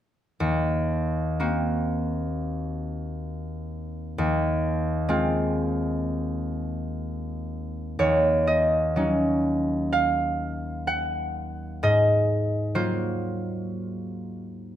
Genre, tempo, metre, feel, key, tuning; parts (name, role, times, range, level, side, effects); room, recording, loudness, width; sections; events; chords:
classical, solo harp piece; 63 BPM; 4/4; uneven beats, rubato; Eb dorian; A4 = 444 Hz
concert harp; solo; 0.4-14.8 s; Eb2 to Gb5; -24 LUFS; equal
moderate recital hall reverb, RT60 1.4 s; close, detailed microphones; -23 LUFS; side -11 dB against mid
0.4-8.0 A section; 8.0-14.8 B section
0.4 Ebm6; 4.2 Fm7/Eb; 8.0 Ebm7; 11.8 Ab13